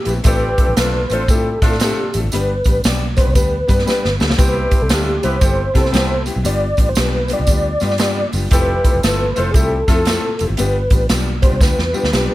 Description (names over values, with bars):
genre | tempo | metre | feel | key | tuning
uptempo 1960s-style soul | 116 BPM | 4/4 | swing 64% on 8ths | unclear | A4 = 443 Hz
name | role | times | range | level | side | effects
mellow tonewheel organ | melody | 0.0-12.3 s | G4 to D5 | -20 LUFS | equal | chorus vibrato, stopped rotary speaker
clear upright piano | accompaniment | 0.1-12.3 s | G3 to D5 | -24 LUFS | left 4 dB | none
vintage muted fingered electric bass | bass | 0.1-12.3 s | F1 to C3 | -20 LUFS | equal | none
swinging big-band drum kit | drums | 0.1-12.3 s | hi-hat, kick drum, snare drum | -17 LUFS | equal | none
tambourine | percussion | 0.1-12.3 s | none | -30 LUFS | right 5 dB | none
mellow horn section | second line | 0.2-10.4 s | G3 to C5 | -24 LUFS | right 1 dB | none
room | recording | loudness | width
little or no reverb | none | -14 LUFS | side -16 dB against mid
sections
0.0-12.3 A section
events
drum fill 3.9-4.4, 11.6-12.3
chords
0.3 Dm7/A; 2.3 G; 4.4 Cmaj7; 6.5 G7; 8.5 Fmaj7; 10.6 G7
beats
| 0.25 0.77 1.28 1.80 | 2.32 2.83 3.35 3.87 | 4.38 4.90 5.42 5.93 | 6.45 6.97 7.48 8.00 | 8.52 9.03 9.55 10.06 | 10.58 11.09 11.61 12.12